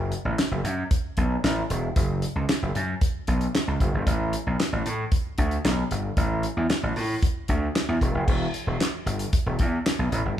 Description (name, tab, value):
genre	early-eighties boogie funk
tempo	114 BPM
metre	4/4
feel	straight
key	E dorian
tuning	A4 = 440 Hz
part	gritty slap bass	bass	0.0-10.3 s	E1 to A2	-25 LUFS	equal	overdrive
part	damped 70s drum kit	drums	0.1-10.2 s	crash cymbal, handclaps, hi-hat, kick drum, snare drum	-25 LUFS	equal	none
room	moderate large studio reverb, RT60 1.2 s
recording	band playing live in one room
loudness	-23 LUFS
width	side -10 dB against mid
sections	0.0-8.3 A section; 8.3-10.4 B section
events	none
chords	none